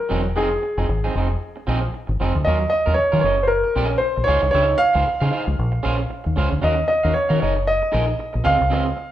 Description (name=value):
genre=disco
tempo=115 BPM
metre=4/4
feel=swing 56% on 16ths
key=unclear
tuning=A4 = 442 Hz
part: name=warm baby grand piano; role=melody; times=0.0-9.1 s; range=Ab4 to F5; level=-20 LUFS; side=right 1 dB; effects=none
part: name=electric guitar at the edge of break-up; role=accompaniment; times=0.0-9.0 s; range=F3 to F5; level=-26 LUFS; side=right 4 dB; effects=none
part: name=deep dub fingered electric bass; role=bass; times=0.1-8.9 s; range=E1 to Eb3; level=-22 LUFS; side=left 1 dB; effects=none
room=moderate large studio reverb, RT60 0.9 s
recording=band playing live in one room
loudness=-17 LUFS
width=side -12 dB against mid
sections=0.0-2.5 A section; 2.5-9.1 B section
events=none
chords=0.4 Fm7; 2.5 Ebm9; 3.2 Gb69; 4.3 Dbmaj9; 5.6 Bbm9; 6.6 Ebm9; 7.4 Gb69; 8.5 Dbmaj9